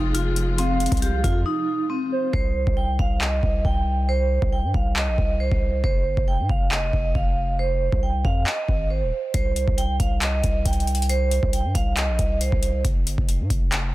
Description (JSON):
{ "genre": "hip hop, trap", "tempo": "137 BPM", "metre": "4/4", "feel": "half-time", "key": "C minor", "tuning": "A4 = 442 Hz", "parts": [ { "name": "vibraphone with medium hard mallets", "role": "melody", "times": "0.0-12.8 s", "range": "C4 to G5", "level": "-26 LUFS", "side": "right 2 dB", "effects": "tape echo" }, { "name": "dark symphonic string section", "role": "sustained chords", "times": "0.0-2.3 s", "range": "C3 to F4", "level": "-33 LUFS", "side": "left 2 dB", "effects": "none" }, { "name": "long sustained 808-style bass", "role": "bass", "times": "0.0-13.9 s", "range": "Eb1 to Ab2", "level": "-24 LUFS", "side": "equal", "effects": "none" }, { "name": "booming analog drum machine", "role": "drums", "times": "0.1-13.8 s", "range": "handclaps, hi-hat, kick drum", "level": "-23 LUFS", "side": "equal", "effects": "overdrive" }, { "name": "hollow clarinet-like synth lead", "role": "second line", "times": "0.6-2.3 s", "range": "C5 to F5", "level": "-31 LUFS", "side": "right 6 dB", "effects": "chorus, tape echo" } ], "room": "digital ambience", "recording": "dense, heavily limited modern master", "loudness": "-20 LUFS", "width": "side -17 dB against mid", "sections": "0.0-2.3 A section; 2.3-13.9 B section", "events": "break 1.5-2.3; hi-hats muted 2.3-9.3", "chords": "0.0 Fm; 2.3 Cm; 5.8 Fm; 9.3 Cm; 12.8 N.C.", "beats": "0.14 | 0.58 1.02 1.46 1.90 | 2.33 2.77 3.21 3.65 | 4.09 4.53 4.96 5.40 | 5.84 6.28 6.71 7.15 | 7.59 8.03 8.47 8.90 | 9.34 9.78 10.22 10.66 | 11.09 11.53 11.97 12.41 | 12.85 13.28 13.72" }